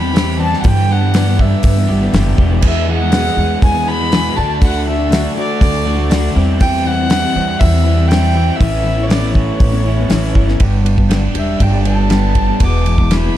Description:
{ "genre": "folk rock and heartland rock", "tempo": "120 BPM", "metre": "4/4", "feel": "straight", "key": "unclear", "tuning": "A4 = 440 Hz", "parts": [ { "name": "dark fiddle", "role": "melody", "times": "0.0-13.4 s", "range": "C#5 to D6", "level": "-20 LUFS", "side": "equal", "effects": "digital delay" }, { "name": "picked steel-string acoustic guitar", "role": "accompaniment", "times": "0.0-13.4 s", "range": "E2 to G#4", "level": "-20 LUFS", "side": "left 3 dB", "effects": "none" }, { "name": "crunchy overdriven guitar", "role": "riff", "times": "0.0-13.4 s", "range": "E2 to G#4", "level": "-20 LUFS", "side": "right 2 dB", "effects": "none" }, { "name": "upright bass", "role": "bass", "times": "0.0-13.3 s", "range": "E1 to G2", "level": "-16 LUFS", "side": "equal", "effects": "none" }, { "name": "damped 70s drum kit", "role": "drums", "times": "0.2-13.2 s", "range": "crash cymbal, hi-hat, kick drum, ride cymbal, snare drum", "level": "-16 LUFS", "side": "equal", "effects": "none" } ], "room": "small room ambience", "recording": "dark, warm production", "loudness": "-11 LUFS", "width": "side -12 dB against mid", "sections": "0.0-10.6 A section; 10.6-13.4 B section", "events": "fiddle solo 10.6-13.4", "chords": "0.0 C/E; 0.6 G6; 2.6 E; 4.4 D; 6.4 C/E; 8.6 Aadd9; 10.6 G; 12.6 E" }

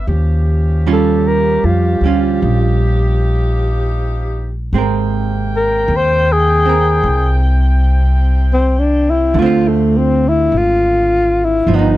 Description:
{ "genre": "jazz ballad", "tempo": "52 BPM", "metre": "4/4", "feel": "swing 66% on 8ths", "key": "unclear", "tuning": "A4 = 440 Hz", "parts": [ { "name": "archtop guitar, miked and amplified", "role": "accompaniment", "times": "0.0-12.0 s", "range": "D3 to Bb4", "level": "-18 LUFS", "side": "right 8 dB", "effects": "none" }, { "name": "mellow saxophone section", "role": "sustained chords", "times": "0.0-12.0 s", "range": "C3 to G5", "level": "-24 LUFS", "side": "left 1 dB", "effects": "none" }, { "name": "upright bass", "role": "bass", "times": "0.0-12.0 s", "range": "G1 to F2", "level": "-15 LUFS", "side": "equal", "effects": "none" }, { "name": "dark alto saxophone", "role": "melody", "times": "0.9-12.0 s", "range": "A3 to C5", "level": "-14 LUFS", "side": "left 2 dB", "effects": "none" } ], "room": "little or no reverb", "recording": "dry, close 1970s-style studio recording", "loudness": "-12 LUFS", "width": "side -15 dB against mid", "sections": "0.0-12.0 A section", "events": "alto saxophone solo 0.0-12.0", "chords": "0.1 Eb9; 4.7 Abmaj9; 9.4 Dm7" }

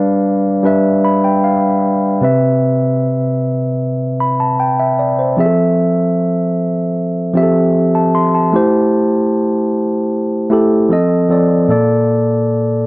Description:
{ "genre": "R&B", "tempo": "76 BPM", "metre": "4/4", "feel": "straight", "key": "C major", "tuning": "A4 = 438 Hz", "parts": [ { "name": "mellow tine electric piano", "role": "solo", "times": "0.0-12.9 s", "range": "Bb2 to C6", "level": "-12 LUFS", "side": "equal", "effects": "none" } ], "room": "light reverb", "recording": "worn, warbling old tape, cassette tape, warbly pitch drift", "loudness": "-12 LUFS", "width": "side -22 dB against mid", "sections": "0.0-2.2 A section; 2.2-12.9 B section", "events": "tine electric piano fill 0.6-2.2", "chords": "0.0 G7; 2.2 Cmaj7; 5.4 Fmaj7; 8.5 Am7; 10.9 F7; 11.7 Bbmaj7" }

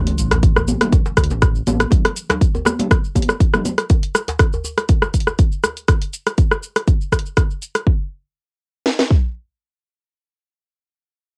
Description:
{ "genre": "afro house", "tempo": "121 BPM", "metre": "4/4", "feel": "swing 53% on 16ths", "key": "unclear", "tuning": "A4 = 440 Hz", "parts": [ { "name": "round analog bass", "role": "bass", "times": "0.0-1.9 s", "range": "A1 to D2", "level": "-24 LUFS", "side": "equal", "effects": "sidechain pumping" }, { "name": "sub drop", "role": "sound effects", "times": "0.0-1.9 s", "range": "none", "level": "-30 LUFS", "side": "equal", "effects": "none" }, { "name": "deep house drum kit", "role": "drums", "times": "0.1-7.8 s", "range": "hi-hat, rim click, shaker", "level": "-21 LUFS", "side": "equal", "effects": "cassette tape" }, { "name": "congas", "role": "percussion", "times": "0.1-3.8 s", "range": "none", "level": "-25 LUFS", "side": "equal", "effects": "none" }, { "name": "djembe", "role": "percussion", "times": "0.3-5.7 s", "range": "none", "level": "-30 LUFS", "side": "equal", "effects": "none" }, { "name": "house drum kit", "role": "drums", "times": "0.4-9.2 s", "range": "kick drum, snare drum", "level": "-18 LUFS", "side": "equal", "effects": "cassette tape" } ], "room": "little or no reverb", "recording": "home recording on cassette", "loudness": "-18 LUFS", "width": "mono", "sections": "0.0-7.9 A section; 7.9-11.4 B section", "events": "impact 0.0-1.9", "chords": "none" }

